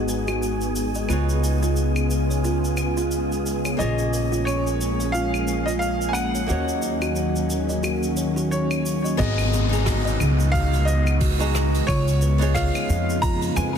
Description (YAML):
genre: sunset chillout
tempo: 89 BPM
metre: 4/4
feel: swing 58% on 16ths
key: G# dorian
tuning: A4 = 439 Hz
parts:
  - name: flamenco guitar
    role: accompaniment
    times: 0.0-13.8 s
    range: A#3 to A#5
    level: -31 LUFS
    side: moving between left 8 dB and right 3 dB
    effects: auto-pan, ping-pong delay
  - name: soft string machine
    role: sustained chords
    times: 0.0-13.8 s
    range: C#3 to F#4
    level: -27 LUFS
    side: left 1 dB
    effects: ensemble chorus
  - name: upright bass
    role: bass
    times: 0.0-13.8 s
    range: G#1 to E#2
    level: -24 LUFS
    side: equal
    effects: none
  - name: wind-like tuned noise texture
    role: texture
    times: 0.0-9.2 s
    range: G#4 to G#5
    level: -35 LUFS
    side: left 1 dB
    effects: built-in reverb
  - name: kalimba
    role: arpeggios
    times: 0.1-13.7 s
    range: E#4 to D#5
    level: -31 LUFS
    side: right 4 dB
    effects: low-pass filter, ping-pong delay
  - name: jazz brush drum kit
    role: drums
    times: 0.1-13.7 s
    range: claves, hi-hat, rim click, shaker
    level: -32 LUFS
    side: equal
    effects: none
  - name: bright concert grand piano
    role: melody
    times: 3.8-13.8 s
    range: C#5 to A#5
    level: -28 LUFS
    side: right 1 dB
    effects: ping-pong delay
  - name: electronic kick drum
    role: drums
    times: 9.2-13.4 s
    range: none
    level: -25 LUFS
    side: equal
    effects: none
  - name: downlifter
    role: sound effects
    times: 9.2-13.8 s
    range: none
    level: -32 LUFS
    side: equal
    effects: none
room: light reverb, studio reverb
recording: dense, heavily limited modern master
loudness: -20 LUFS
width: side -8 dB against mid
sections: 0.0-9.2 A section; 9.2-13.8 B section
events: none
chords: 0.0 G#m7; 1.1 C#7; 3.8 A#m7; 6.5 D#m7; 9.2 G#m7; 11.9 C#7